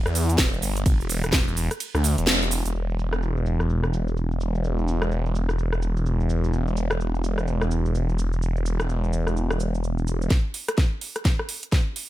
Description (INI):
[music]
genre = bass house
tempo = 127 BPM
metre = 4/4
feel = swing 61% on 16ths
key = E minor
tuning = A4 = 441 Hz
[part]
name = phased detuned saw bass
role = bass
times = 0.0-10.3 s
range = E1 to E2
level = -23 LUFS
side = equal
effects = phaser, sidechain pumping
[part]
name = house drum kit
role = drums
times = 0.1-12.1 s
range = cabasa, hi-hat, ride cymbal, rim click, snare drum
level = -27 LUFS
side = equal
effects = high-pass filter on snare, low-pass filter on snare, high-pass filter on hats, low-pass filter on hats, high-pass filter on perc, low-pass filter on perc, high-pass filter on cymbals, low-pass filter on cymbals
[part]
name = electronic kick drum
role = drums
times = 0.4-1.4, 10.3-11.8 s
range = none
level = -21 LUFS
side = equal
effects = none
[sound]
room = digital ambience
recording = none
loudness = -22 LUFS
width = side -14 dB against mid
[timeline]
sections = 0.0-2.7 A section; 2.7-10.3 B section; 10.3-12.1 C section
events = drop 0.0-2.7; kick drops out 1.8-2.7; band accent 2.3; build-up 10.3-12.1; drum fill 10.3-12.1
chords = none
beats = 0.39 | 0.86 1.33 1.80 2.27 | 2.75 3.22 3.69 4.17 | 4.64 5.11 5.58 6.05 | 6.53 7.00 7.47 7.94 | 8.42 8.89 9.36 9.83 | 10.31 10.78 11.25 11.72